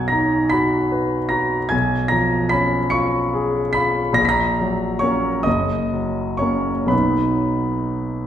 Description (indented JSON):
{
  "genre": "classical, romantic nocturne for solo piano",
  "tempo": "38-51 BPM (dotted quarters)",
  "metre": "6/8",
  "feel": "rubato",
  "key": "B major",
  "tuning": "A4 = 443 Hz",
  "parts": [
    { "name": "clear concert grand piano", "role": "solo", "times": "0.0-8.3 s", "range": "F#1 to C#7", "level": "-17 LUFS", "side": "equal", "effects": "none" }
  ],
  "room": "wet recital hall reverb, RT60 1.6 s",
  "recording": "heard from further back in the room",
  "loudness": "-17 LUFS",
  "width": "side -10 dB against mid",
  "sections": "0.0-8.3 A section",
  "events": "none",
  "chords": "0.0 B; 1.7 C#7/B; 4.2 F#/A#; 5.5 F#; 6.9 B"
}